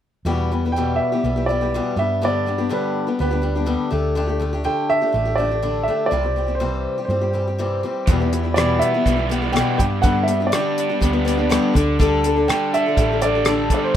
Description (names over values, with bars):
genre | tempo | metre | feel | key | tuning
folk rock and heartland rock | 123 BPM | 4/4 | straight | unclear | A4 = 440 Hz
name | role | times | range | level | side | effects
hollow-body short-scale fingered electric bass | bass | 0.2-13.7 s | A1 to G2 | -24 LUFS | right 1 dB | none
picked acoustic archtop guitar | accompaniment | 0.3-14.0 s | E2 to A4 | -22 LUFS | left 4 dB | none
clear grand piano | melody | 0.7-14.0 s | A4 to G5 | -22 LUFS | right 2 dB | none
raw garage guitar | riff | 8.1-14.0 s | E2 to D4 | -24 LUFS | right 4 dB | overdrive
damped 70s drum kit | drums | 8.1-13.8 s | hi-hat, kick drum, rim click | -20 LUFS | equal | none
room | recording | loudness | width
light reverb, studio ambience | rough home demo mix | -17 LUFS | side -10 dB against mid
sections
0.3-14.0 A section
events
none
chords
0.3 Em; 2.0 G; 3.9 Dsus4; 6.1 C; 8.1 Em; 9.8 G; 11.7 Dsus4